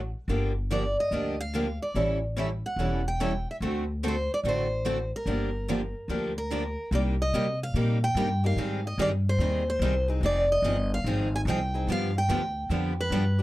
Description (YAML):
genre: acoustic string swing (jazz manouche)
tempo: 145 BPM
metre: 4/4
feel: swing 64% on 8ths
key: G minor, C minor from 6.9 s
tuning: A4 = 438 Hz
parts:
  - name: picked steel-string acoustic guitar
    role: melody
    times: 0.0-13.4 s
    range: Bb4 to Ab5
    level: -30 LUFS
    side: equal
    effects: none
  - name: upright bass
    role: bass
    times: 0.0-13.4 s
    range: E1 to C3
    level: -28 LUFS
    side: equal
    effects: none
  - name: picked steel-string acoustic guitar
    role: accompaniment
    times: 0.3-13.4 s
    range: C3 to A4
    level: -33 LUFS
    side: left 3 dB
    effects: none
  - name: picked steel-string acoustic guitar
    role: accompaniment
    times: 0.3-13.2 s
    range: C3 to A4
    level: -33 LUFS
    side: right 5 dB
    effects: none
room: little or no reverb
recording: dry, close 1970s-style studio recording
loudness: -25 LUFS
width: side -16 dB against mid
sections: 0.0-6.9 A section; 6.9-13.4 B section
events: none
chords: 0.3 Gm7; 1.9 A7; 3.6 D7; 5.3 Gm7; 6.9 Cm7; 8.6 Abmaj7; 10.2 Fm7; 11.9 G7